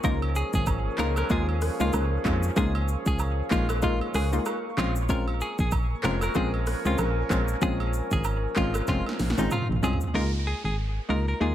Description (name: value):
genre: afrobeats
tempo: 95 BPM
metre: 4/4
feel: swing 58% on 16ths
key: unclear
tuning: A4 = 441 Hz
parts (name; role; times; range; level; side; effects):
- direct-recorded clean electric guitar; melody; 0.0-11.5 s; Eb4 to Bb4; -33 LUFS; equal; analog delay
- warm horn section; second line; 0.0-9.5 s; F3 to Bb4; -36 LUFS; right 5 dB; none
- hollow square pluck; accompaniment; 0.0-11.5 s; Ab3 to F4; -30 LUFS; left 2 dB; chorus
- deep dark ambient pad; sustained chords; 0.0-11.5 s; Bb4 to Db6; -37 LUFS; left 1 dB; chorus, built-in reverb, sidechain pumping
- solid FM bass; bass; 0.0-11.5 s; F1 to F2; -27 LUFS; equal; none
- deep house drum kit; drums; 0.0-10.2 s; handclaps, hi-hat, kick drum, rim click, shaker, snare drum, toms; -30 LUFS; equal; overdrive
- agogo bells and woodblock; percussion; 0.2-10.0 s; none; -38 LUFS; right 7 dB; none
- downlifter; sound effects; 10.1-11.5 s; none; -40 LUFS; right 2 dB; none
room: light reverb, digital ambience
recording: echo-heavy mix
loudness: -24 LUFS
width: side -11 dB against mid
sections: 0.0-10.1 A section; 10.1-11.5 B section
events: drum fill 8.9-10.1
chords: 0.0 Db6; 4.8 Bbm7; 10.1 Db6